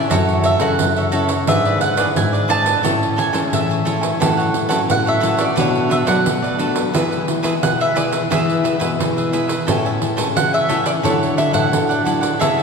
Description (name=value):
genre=samba and choro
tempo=88 BPM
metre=4/4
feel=straight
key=A major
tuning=A4 = 441 Hz
part: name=mandolin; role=melody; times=0.0-12.6 s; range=C#5 to A5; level=-21 LUFS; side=right 1 dB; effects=none
part: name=cavaquinho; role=accompaniment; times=0.0-12.6 s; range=D4 to A5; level=-23 LUFS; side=right 3 dB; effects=none
part: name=nylon-string guitar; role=accompaniment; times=0.0-12.6 s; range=A2 to B4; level=-22 LUFS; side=left 4 dB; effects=none
part: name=nylon-string guitar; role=bass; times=0.1-12.6 s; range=F#2 to F#3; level=-22 LUFS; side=left 1 dB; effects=none
part: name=pandeiro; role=percussion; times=0.1-12.6 s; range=none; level=-22 LUFS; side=right 4 dB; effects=none
room=wet cathedral reverb, RT60 4.2 s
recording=recorded in a church or concert hall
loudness=-15 LUFS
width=side -5 dB against mid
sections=0.0-12.6 A section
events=none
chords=0.1 F#m7; 1.5 E7/G#; 2.8 Amaj7; 4.2 F#m7/A; 5.6 Bm7; 6.9 E; 9.7 Amaj7; 11.0 Dadd9